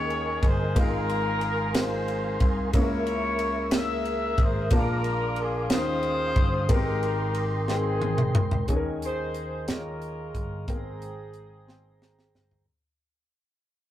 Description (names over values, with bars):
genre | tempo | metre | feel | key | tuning
slow gospel | 60 BPM (dotted quarters) | 6/8 | straight | Ab major | A4 = 442 Hz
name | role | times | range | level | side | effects
warm horn section | melody | 0.0-12.4 s | C4 to Fb5 | -30 LUFS | left 1 dB | none
warm upright piano | accompaniment | 0.0-12.7 s | Ab2 to G5 | -32 LUFS | left 2 dB | none
mellow tonewheel organ | sustained chords | 0.0-12.7 s | Db4 to Eb6 | -32 LUFS | equal | slow rotary speaker
vintage slap bass | bass | 0.0-12.7 s | G1 to Eb2 | -32 LUFS | equal | none
tight funk drum kit | drums | 0.1-12.7 s | hi-hat, kick drum, ride cymbal, snare drum, toms | -25 LUFS | equal | none
room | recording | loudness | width
wet small room ambience, RT60 0.5 s | rough rehearsal-room recording | -24 LUFS | side -12 dB against mid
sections
0.0-8.7 A section; 8.7-12.7 B section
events
drum fill 7.7-8.7, 11.7-12.7; fade-out 8.7-12.7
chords
0.0 Eb7sus4; 0.8 Ab69; 2.7 Dbm6; 4.7 Bb7; 5.7 Eb9sus4; 6.7 Abmaj9; 8.7 Eb7sus4; 9.7 Eb9sus4; 10.7 Abmaj9